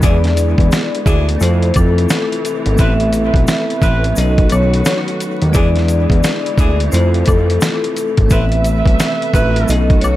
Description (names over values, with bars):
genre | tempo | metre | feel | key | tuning
hip hop, boom-bap hip-hop | 87 BPM | 4/4 | swing 62% on 16ths | A harmonic minor | A4 = 440 Hz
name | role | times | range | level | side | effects
vibraphone with medium hard mallets | melody | 0.0-10.2 s | A4 to E5 | -20 LUFS | left 2 dB | high-pass filter, low-pass filter, analog delay
bell-like tine electric piano | accompaniment | 0.0-10.2 s | E3 to A4 | -21 LUFS | equal | medium stereo tremolo, cassette tape, high-pass filter, low-pass filter, analog delay
warm studio string section | sustained chords | 0.0-10.2 s | C3 to E5 | -26 LUFS | right 2 dB | high-pass filter, low-pass filter
clear saxophone section | stabs | 0.0-9.8 s | D#3 to B4 | -24 LUFS | right 2 dB | high-pass filter, low-pass filter, analog delay
fat analog bass | bass | 0.0-10.2 s | G#1 to F2 | -14 LUFS | equal | none
boom bap sampler-style drum kit | drums | 0.0-10.2 s | hi-hat, kick drum, snare drum | -15 LUFS | equal | none
egg shaker and woodblock | percussion | 0.0-10.2 s | none | -28 LUFS | left 3 dB | analog delay
room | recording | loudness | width
little or no reverb | echo-heavy mix, vinyl crackle | -12 LUFS | side -15 dB against mid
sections
0.0-8.3 A section; 8.3-10.2 A section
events
none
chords
0.0 E7; 1.4 Fmaj7; 2.8 Amadd9; 4.2 B7; 5.5 E7; 6.9 Fmaj7; 8.3 Amadd9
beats
| 0.03 0.72 1.41 2.10 | 2.79 3.48 4.17 4.86 | 5.55 6.24 6.93 7.62 | 8.31 9.00 9.69